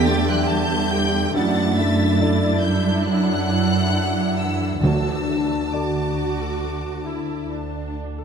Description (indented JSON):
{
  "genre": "cinematic, emotional film score for orchestra",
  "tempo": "68 BPM",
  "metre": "4/4",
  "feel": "rubato",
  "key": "D major",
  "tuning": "A4 = 445 Hz",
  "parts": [
    { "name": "warm symphonic violin section", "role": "melody", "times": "0.0-7.5 s", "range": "D6 to A6", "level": "-30 LUFS", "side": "left 3 dB", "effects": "none" },
    { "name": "warm symphonic violin section", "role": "second line", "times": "0.0-7.9 s", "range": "D5 to A5", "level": "-30 LUFS", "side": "equal", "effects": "none" },
    { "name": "felt-muted upright piano", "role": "accompaniment", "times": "0.0-8.2 s", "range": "D2 to E5", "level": "-30 LUFS", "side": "equal", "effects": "none" },
    { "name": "warm symphonic viola section", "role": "accompaniment", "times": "0.0-8.2 s", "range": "D3 to G4", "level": "-26 LUFS", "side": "right 2 dB", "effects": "none" },
    { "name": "concert harp", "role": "arpeggios", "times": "0.0-8.2 s", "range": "F#2 to A5", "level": "-27 LUFS", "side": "left 9 dB", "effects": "none" },
    { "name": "warm symphonic cello section", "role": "bass", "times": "0.0-7.5 s", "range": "D3 to A3", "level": "-28 LUFS", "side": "right 3 dB", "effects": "none" },
    { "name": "warm symphonic double bass section", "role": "bass", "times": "0.0-8.1 s", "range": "D2 to F#2", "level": "-23 LUFS", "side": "right 4 dB", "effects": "none" },
    { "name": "timpani", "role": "percussion", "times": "4.8-6.1 s", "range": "D3", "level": "-24 LUFS", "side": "right 1 dB", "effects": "none" }
  ],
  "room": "light reverb",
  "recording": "none",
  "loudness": "-19 LUFS",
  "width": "side -6 dB against mid",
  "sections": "0.0-8.2 A section",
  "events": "none",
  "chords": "0.0 Em7; 1.4 Dadd9/F#; 4.8 Dadd9"
}